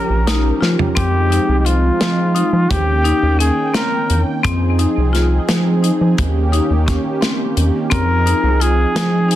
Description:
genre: progressive instrumental, band music in an uneven meter.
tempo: 173 BPM (eighths).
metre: 5/8.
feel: straight.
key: F minor.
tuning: A4 = 439 Hz.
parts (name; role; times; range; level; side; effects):
mellow trumpet; melody; 0.0-4.2, 7.9-9.4 s; F4 to Bb4; -19 LUFS; equal; none.
warm analog pad; accompaniment; 0.0-9.4 s; Eb3 to G5; -22 LUFS; right 4 dB; chorus.
rubbery square bass; bass; 0.1-9.4 s; Bb1 to F3; -16 LUFS; equal; none.
marimba with hard mallets; arpeggios; 0.3-9.4 s; C4 to F4; -22 LUFS; left 6 dB; ping-pong delay.
modern studio drum kit; drums; 0.3-9.4 s; hi-hat, kick drum, snare drum, toms; -21 LUFS; equal; soft clipping on kick.
room: moderate studio reverb, RT60 0.6 s.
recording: dense, heavily limited modern master.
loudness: -13 LUFS.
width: side -13 dB against mid.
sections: 1.0-9.4 A section.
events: drum fill 0.6-1.0.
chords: 0.0 Eb7; 1.0 Fm7; 2.7 Eb7; 4.4 Fm7; 6.2 Eb7; 7.9 Fm7.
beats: 0.28 0.62 | 0.97 1.32 1.67 2.01 2.36 | 2.71 3.05 3.40 3.75 4.10 | 4.44 4.79 5.14 5.49 5.83 | 6.18 6.53 6.87 7.22 7.57 | 7.92 8.26 8.61 8.96 9.31.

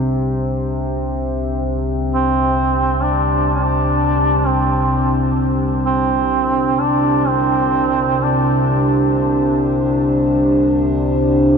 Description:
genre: dark ambient drone.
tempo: free time.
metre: none.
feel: none.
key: unclear.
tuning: A4 = 440 Hz.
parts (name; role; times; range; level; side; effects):
dark analog pad; sustained chords; 0.0-11.6 s; D4 to C5; -20 LUFS; right 1 dB; chorus.
analog drone; drone; 0.0-11.6 s; C2 to C3; -19 LUFS; left 1 dB; chorus.
mellow duduk; melody; 2.1-8.9 s; C4 to D4; -18 LUFS; right 1 dB; ping-pong delay.
room: wet huge ambient reverb, RT60 7.5 s.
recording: none.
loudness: -14 LUFS.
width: side -6 dB against mid.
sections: 0.0-1.7 A section; 1.7-11.6 B section.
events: none.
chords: 0.0 Csus2.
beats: free time.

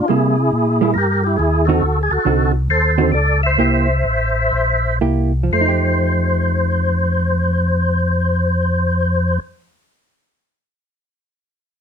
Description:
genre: jazz.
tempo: 118-138 BPM.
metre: 4/4.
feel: swing 66% on 8ths.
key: F mixolydian.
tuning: A4 = 440 Hz.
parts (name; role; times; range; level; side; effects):
percussive tonewheel organ; melody; 0.0-9.4 s; E4 to E5; -18 LUFS; left 1 dB; slow rotary speaker, overdrive, chorus vibrato.
mellow tonewheel organ; bass; 0.0-9.4 s; A1 to C3; -18 LUFS; left 1 dB; chorus vibrato, slow rotary speaker.
hollow-body jazz guitar; accompaniment; 0.1-9.6 s; D3 to G4; -20 LUFS; right 6 dB; none.
room: little or no reverb.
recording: none.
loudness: -14 LUFS.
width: side -7 dB against mid.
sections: 0.0-5.5 A section; 5.5-9.6 B section.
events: slowing down 1.8-5.5.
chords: 0.1 C7; 1.8 D7b9; 3.6 C7; 5.5 F9.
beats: | 0.09 0.52 0.96 1.39 | 1.82 2.26 2.70 3.14 | 3.59 4.06 4.53 5.01 | 5.52 6.03 6.54 7.05 | 7.56 8.07 8.58 9.09.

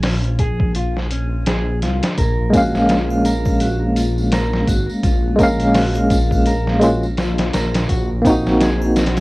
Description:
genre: trip hop.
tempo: 84 BPM.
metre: 4/4.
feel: swing 58% on 16ths.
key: unclear.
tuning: A4 = 440 Hz.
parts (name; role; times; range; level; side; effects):
mellow electric guitar; arpeggios; 0.0-9.2 s; Db4 to Bb4; -26 LUFS; left 1 dB; vintage 12-bit sampler grit, cassette tape, tape echo.
dark detuned saw bass; bass; 0.0-9.2 s; Ab1 to C2; -20 LUFS; equal; tube saturation.
trip hop sampler-style drum kit; drums; 0.0-9.2 s; hi-hat, kick drum, snare drum; -20 LUFS; equal; none.
tambourine and triangle; percussion; 2.2-9.2 s; none; -35 LUFS; left 1 dB; none.
bright tine electric piano; accompaniment; 2.5-9.2 s; Ab3 to F5; -16 LUFS; equal; tremolo, cassette tape, tape echo.
room: little or no reverb.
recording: home recording on cassette.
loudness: -15 LUFS.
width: side -21 dB against mid.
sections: 0.0-9.2 A section.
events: none.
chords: 0.0 Db/Bb; 2.2 Gbmaj7; 7.9 Ab7/Bb.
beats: 0.04 0.75 1.47 | 2.18 2.89 3.61 4.32 | 5.04 5.75 6.46 7.18 | 7.89 8.61.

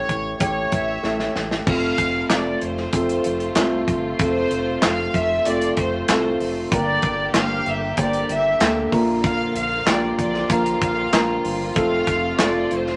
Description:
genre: piano-driven pop.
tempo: 95 BPM.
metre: 4/4.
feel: straight.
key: unclear.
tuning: A4 = 439 Hz.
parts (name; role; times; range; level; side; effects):
warm studio violin section; melody; 0.0-13.0 s; C5 to F5; -27 LUFS; equal; none.
dark baby grand piano; accompaniment; 0.0-13.0 s; G2 to C5; -25 LUFS; equal; none.
round analog bass; bass; 0.0-13.0 s; F1 to D2; -34 LUFS; equal; none.
modern studio drum kit; drums; 0.1-12.9 s; crash cymbal, handclaps, hi-hat, kick drum, snare drum; -25 LUFS; equal; none.
rich studio string section; sustained chords; 1.7-13.0 s; C3 to G4; -32 LUFS; equal; none.
room: moderate studio reverb, RT60 0.7 s.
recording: none.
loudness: -21 LUFS.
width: mono.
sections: 0.0-1.7 A section; 1.7-13.0 B section.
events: drum fill 1.0-1.7.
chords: 0.0 A; 1.7 F; 6.7 Gm; 8.9 Bb; 11.8 F.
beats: 0.41 1.04 | 1.67 2.30 2.93 3.56 | 4.19 4.83 5.46 6.09 | 6.72 7.35 7.98 8.61 | 9.24 9.87 10.50 11.13 | 11.77 12.39.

